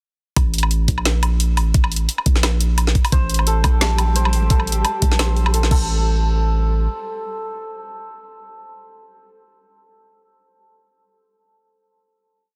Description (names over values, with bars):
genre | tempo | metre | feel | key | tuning
half-time drum and bass | 174 BPM | 4/4 | swing 55% on 16ths, half-time | A phrygian | A4 = 441 Hz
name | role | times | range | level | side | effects
long sustained 808-style bass | bass | 0.4-6.9 s | A1 to Bb1 | -20 LUFS | equal | none
drum and bass drum kit | drums | 0.4-5.8 s | crash cymbal, hi-hat, snare drum, woodblock | -24 LUFS | equal | overdrive
electronic kick drum | drums | 0.4-5.8 s | none | -20 LUFS | equal | overdrive
santur | arpeggios | 3.1-8.6 s | A4 to A5 | -29 LUFS | equal | digital delay
flickering grainy texture | texture | 3.8-5.9 s | G3 to G4 | -35 LUFS | equal | built-in reverb
room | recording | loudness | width
digital ambience | dense, heavily limited modern master | -18 LUFS | mono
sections
0.4-5.9 drop; 5.9-8.6 final hit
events
drop 0.4-5.9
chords
0.4 Am; 5.7 Gsus2/A; 5.9 N.C.